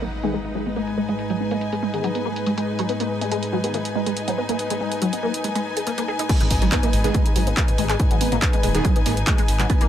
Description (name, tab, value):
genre	driving peak-time techno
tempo	141 BPM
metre	4/4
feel	straight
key	G# minor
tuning	A4 = 443 Hz
part	resonant blip pluck	riff	0.0-9.9 s	F#3 to G#4	-26 LUFS	equal	phaser, overdrive, analog chorus, sidechain pumping, tape echo
part	deep dark ambient pad	drone	0.0-6.3 s	G#2 to G#3	-30 LUFS	equal	chorus, built-in reverb, sidechain pumping
part	techno drum kit	drums	0.0-9.9 s	crash cymbal, handclaps, hi-hat, toms	-28 LUFS	right 1 dB	low-pass filter on snare, sidechain pumping on hats, low-pass filter on hats, sidechain pumping on cymbals, low-pass filter on cymbals, sidechain pumping on toms, low-pass filter on toms, low-pass filter on room
part	impact	sound effects	0.0-1.2 s	none	-35 LUFS	equal	none
part	rich symphonic string section	texture	0.0-9.9 s	D#4 to G#5	-28 LUFS	left 2 dB	sidechain pumping
part	rave stab	stabs	0.2-3.8, 7.0-8.9 s	D#3 to G#4	-30 LUFS	right 2 dB	chorus, built-in reverb, sidechain pumping, digital delay
part	electronic kick drum	drums	6.3-9.8 s	none	-20 LUFS	equal	none
part	dark detuned saw bass	bass	6.4-9.9 s	D#1 to G#1	-24 LUFS	equal	sidechain pumping
room	light reverb, digital ambience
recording	none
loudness	-19 LUFS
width	side -10 dB against mid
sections	0.0-6.3 A section; 6.3-9.9 B section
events	impact 0.0-1.2; filter sweep on synth arpeggio sound 0.0-6.3; drop 6.3-9.9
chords	0.0 G#m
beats	0.34 0.76 | 1.19 1.61 2.04 2.46 | 2.89 3.31 3.74 4.17 | 4.59 5.02 5.44 5.87 | 6.29 6.72 7.14 7.57 | 8.00 8.42 8.85 9.27 | 9.70